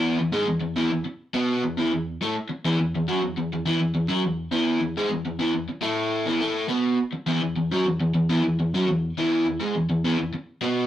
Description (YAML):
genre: rock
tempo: 104 BPM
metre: 4/4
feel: straight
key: E major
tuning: A4 = 439 Hz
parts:
  - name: overdriven electric guitar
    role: solo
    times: 0.0-10.9 s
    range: E2 to B3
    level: -22 LUFS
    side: equal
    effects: none
room: moderate studio reverb, RT60 0.6 s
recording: rough rehearsal-room recording, warm saturation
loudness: -22 LUFS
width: side -12 dB against mid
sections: 0.0-10.9 A section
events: none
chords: 0.0 E5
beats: | 0.05 0.63 1.20 1.78 | 2.35 2.93 3.51 4.09 | 4.67 5.24 5.82 6.40 | 6.99 7.57 8.15 8.73 | 9.32 9.90 10.48